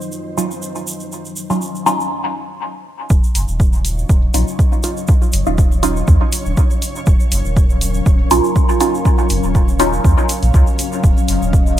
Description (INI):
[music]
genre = dub techno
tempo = 121 BPM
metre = 4/4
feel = swing 54% on 16ths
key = Eb dorian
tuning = A4 = 441 Hz
[part]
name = dark analog pad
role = sustained chords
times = 0.0-11.8 s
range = Gb3 to F5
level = -25 LUFS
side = left 4 dB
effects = chorus, vintage 12-bit sampler grit, sidechain pumping
[part]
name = tube shaker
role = percussion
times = 0.0-11.8 s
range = none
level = -28 LUFS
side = right 3 dB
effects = none
[part]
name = flickering grainy texture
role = texture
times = 0.0-11.8 s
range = C4 to Eb5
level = -32 LUFS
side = left 1 dB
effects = built-in reverb, lush chorus, sidechain pumping
[part]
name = filtered dub chord stab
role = stabs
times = 0.4-10.0 s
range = Gb3 to F4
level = -19 LUFS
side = right 1 dB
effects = phaser, vintage 12-bit sampler grit, sidechain pumping, dub echo
[part]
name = warm sub bass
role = bass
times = 3.1-11.8 s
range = Eb1 to Eb2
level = -18 LUFS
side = equal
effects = sidechain pumping
[part]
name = electronic kick drum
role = drums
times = 3.1-11.6 s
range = none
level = -13 LUFS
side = equal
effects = none
[part]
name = electronic hi-hat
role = drums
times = 3.4-11.4 s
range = none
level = -24 LUFS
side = left 1 dB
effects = none
[sound]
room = light reverb, digital ambience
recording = bright 1980s-style digital production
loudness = -13 LUFS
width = side -12 dB against mid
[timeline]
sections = 0.0-3.1 A section; 3.1-11.8 B section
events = filter sweep on synth stab 0.0-3.1; break 2.1-3.1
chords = 0.0 Ebm9